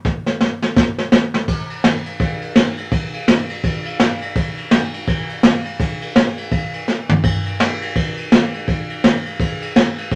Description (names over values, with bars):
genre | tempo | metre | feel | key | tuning
rock | 167 BPM | 4/4 | swing 61% on 8ths | none | none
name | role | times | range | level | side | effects
jazz brush drum kit | drums | 0.0-10.2 s | crash cymbal, kick drum, ride cymbal, snare drum, toms | -18 LUFS | equal | none
room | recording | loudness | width
moderate studio reverb, RT60 0.5 s | none | -18 LUFS | mono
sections
0.0-1.5 A section; 1.5-10.2 A section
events
drum fill 0.0-1.5, 6.9-7.2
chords
none